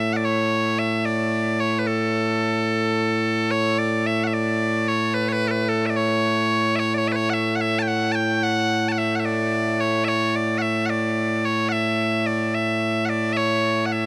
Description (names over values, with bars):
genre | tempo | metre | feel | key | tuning
scottish traditional, Scottish pipe music | 73 BPM (dotted quarters) | 6/8 | straight | A major | A4 = 443 Hz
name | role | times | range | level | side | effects
loud bright bagpipes | solo | 0.0-14.1 s | A2 to A5 | -22 LUFS | equal | none
room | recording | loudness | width
moderate huge ambient reverb, RT60 7.2 s | none | -22 LUFS | mono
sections
0.0-3.5 A section; 3.5-14.1 A section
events
none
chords
none